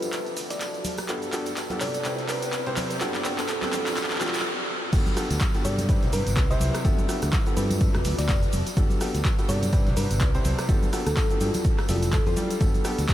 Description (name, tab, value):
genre	piano house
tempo	125 BPM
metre	4/4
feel	swing 57% on 16ths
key	G major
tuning	A4 = 438 Hz
part	thumb-piano-like synth pluck	melody	0.0-12.3 s	A4 to E5	-33 LUFS	equal	chorus, cassette tape, analog delay
part	bright upright piano	riff	0.0-13.0 s	G2 to D5	-30 LUFS	equal	sidechain pumping, low-pass filter, analog delay
part	fingered electric bass	bass	0.0-13.1 s	F1 to G2	-28 LUFS	equal	tube saturation, sidechain pumping, high-pass filter
part	punchy analog drum machine	drums	0.0-13.1 s	cabasa, crash cymbal, handclaps, hi-hat, rim click	-31 LUFS	equal	none
part	tambourine and congas	percussion	0.0-13.1 s	none	-35 LUFS	equal	none
part	granular cloud pad	texture	0.1-13.1 s	E4 to A5	-37 LUFS	equal	built-in reverb, analog chorus, sidechain pumping
part	dusty soul sampler-style drum kit	drums	0.1-13.1 s	hi-hat, snare drum	-44 LUFS	right 1 dB	none
part	electronic kick drum	drums	4.9-13.1 s	none	-23 LUFS	equal	none
room	moderate huge ambient reverb, RT60 7.4 s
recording	dreamy mix soaked in reverb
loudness	-22 LUFS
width	side -13 dB against mid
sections	0.0-4.9 A section; 4.9-13.1 B section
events	build-up 0.0-4.9; drum fill 0.0-4.4; filter sweep on upright piano 0.0-4.9; stop 4.4-4.9; drop 4.9-13.1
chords	0.1 F69; 1.1 Gmaj9; 2.0 Cmaj7; 3.0 Gmaj9; 4.0 F69; 4.9 Gmaj9; 5.9 Cmaj7; 6.8 Gmaj9; 7.8 F69; 8.8 Gmaj9; 9.7 Cmaj7; 10.7 Gmaj9; 11.6 F69; 12.6 Gmaj9